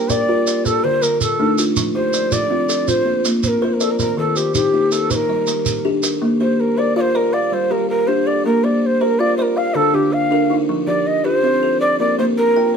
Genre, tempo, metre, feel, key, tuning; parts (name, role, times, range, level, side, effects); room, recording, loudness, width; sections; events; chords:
southern african traditional, mbira-style interlocking cycle; 108 BPM (dotted quarters); 12/8; straight; Bb major; A4 = 440 Hz
breathy mellow Native American-style cedar flute; melody; 0.0-12.7 s; G4 to F5; -18 LUFS; equal
buzzing kalimba; arpeggios; 0.0-12.8 s; D3 to F5; -21 LUFS; right 1 dB
kalimba; arpeggios; 0.0-12.8 s; D3 to G5; -21 LUFS; left 2 dB
shekere; percussion; 0.1-6.2 s; -23 LUFS; right 5 dB
light reverb; band playing live in one room; -15 LUFS; side -6 dB against mid
0.0-6.2 A section; 6.2-12.8 B section
0.0 Bb; 0.7 Dm; 1.8 F; 2.9 Bb; 4.0 Eb; 5.1 Gm; 6.2 Bb; 7.3 G5; 8.5 Bb; 9.6 Dm; 10.7 F; 11.8 Bb5